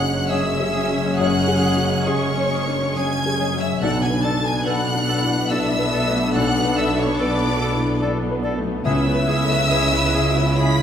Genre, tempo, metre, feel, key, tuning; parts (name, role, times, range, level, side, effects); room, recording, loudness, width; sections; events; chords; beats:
cinematic, emotional film score for orchestra; 71 BPM; 3/4; rubato; F# minor; A4 = 440 Hz
rich symphonic violin section; melody; 0.0-10.8 s; C#6 to B6; -25 LUFS; equal
warm oboe; second line; 0.0-10.8 s; G#4 to A4; -32 LUFS; right 2 dB
warm studio violin section; second line; 0.0-10.8 s; C#5 to B5; -27 LUFS; left 1 dB
rich symphonic viola section; accompaniment; 0.0-10.8 s; B3 to B4; -29 LUFS; right 2 dB
warm baby grand piano; accompaniment; 0.0-10.8 s; B1 to B4; -27 LUFS; left 2 dB
warm French horn section; sustained chords; 0.0-10.8 s; G#3 to E4; -26 LUFS; left 2 dB
concert harp; arpeggios; 0.0-10.8 s; F#2 to B4; -27 LUFS; left 5 dB
rich symphonic cello section; bass; 0.0-10.8 s; F#2 to C#3; -26 LUFS; right 3 dB
warm symphonic double bass section; bass; 0.0-10.8 s; F#1 to C#2; -27 LUFS; right 3 dB
flute section; second line; 0.3-10.7 s; C#5 to E5; -32 LUFS; left 5 dB
wet recital hall reverb, RT60 1.6 s; -17 LUFS; side -8 dB against mid
0.0-10.8 A section
0.0 F#sus2; 3.8 Bm7; 8.9 C#m7
0.30 | 1.17 2.05 2.95 | 3.81 4.66 5.50 | 6.34 7.19 8.02 | 8.85 9.70 10.60